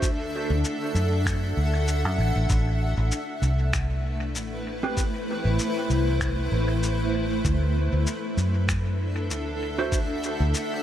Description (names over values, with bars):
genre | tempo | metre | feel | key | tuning
ambient dub | 97 BPM | 4/4 | swing 56% on 16ths | unclear | A4 = 440 Hz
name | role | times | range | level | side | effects
granular cloud pad | sustained chords | 0.0-10.8 s | A3 to F#5 | -28 LUFS | equal | built-in reverb
mellow electric guitar | stabs | 0.0-0.1, 4.8-5.0, 9.8-10.0 s | C4 to C5 | -33 LUFS | right 4 dB | dub echo
vintage muted fingered electric bass | bass | 0.0-10.5 s | A1 to F#2 | -24 LUFS | equal | tube saturation
electronic cabasa and finger snaps | drums | 0.0-10.7 s | none | -35 LUFS | left 1 dB | dub echo
electronic kick drum | drums | 0.0-10.1 s | none | -28 LUFS | equal | none
room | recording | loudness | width
light reverb | none | -23 LUFS | side -11 dB against mid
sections
0.0-10.8 A section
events
none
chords
0.0 Dadd9; 2.5 Amadd9; 7.4 D9